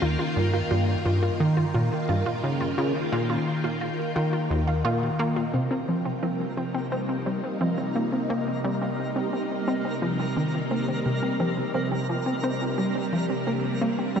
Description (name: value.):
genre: ambient, sequencer-driven space music.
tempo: 87 BPM.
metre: 4/4.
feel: straight.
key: C minor from 5.5 s.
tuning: A4 = 440 Hz.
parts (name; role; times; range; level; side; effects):
phased string machine; sustained chords; 0.0-14.2 s; C3 to G5; -29 LUFS; equal; ensemble chorus, phaser, shimmer reverb.
wide unison pluck; arpeggios; 0.0-14.1 s; C4 to F5; -32 LUFS; moving between left 2 dB and right 5 dB; auto-pan, vintage 12-bit sampler grit, tape echo, shimmer reverb.
plucky analog bass; riff; 0.0-14.2 s; Eb2 to C4; -26 LUFS; equal; analog chorus, tape echo.
twinkling granular texture; texture; 6.1-14.2 s; Bb3 to Bb4; -34 LUFS; equal; built-in reverb, shimmer reverb.
room: wet lush hall reverb, RT60 2.8 s.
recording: dark, warm production.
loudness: -24 LUFS.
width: side -7 dB against mid.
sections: 0.0-5.5 A section; 5.5-14.2 B section.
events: none.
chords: 0.0 Eb; 5.5 Cm7.